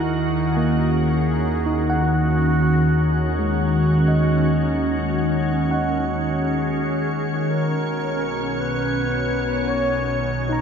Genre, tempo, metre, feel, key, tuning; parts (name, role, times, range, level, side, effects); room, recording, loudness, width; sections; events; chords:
ambient; 55 BPM; 4/4; straight; A4 = 440 Hz
wooden-headed alto flute; melody; 0.0-10.5 s; D#4 to C#5; -28 LUFS; equal; diffuse ambient delay
soft additive organ-like pad; sustained chords; 0.0-10.6 s; B2 to C#5; -20 LUFS; equal; ensemble chorus, built-in reverb, phaser
tine electric piano; arpeggios; 0.0-10.6 s; G#3 to A#5; -26 LUFS; right 1 dB; auto-pan, diffuse ambient delay
round analog bass; bass; 0.0-10.6 s; B1 to D#2; -29 LUFS; equal
wet cathedral reverb, RT60 6.7 s; -18 LUFS; side -7 dB against mid
0.0-10.6 A section
0.0 D#m7; 7.5 Bmaj9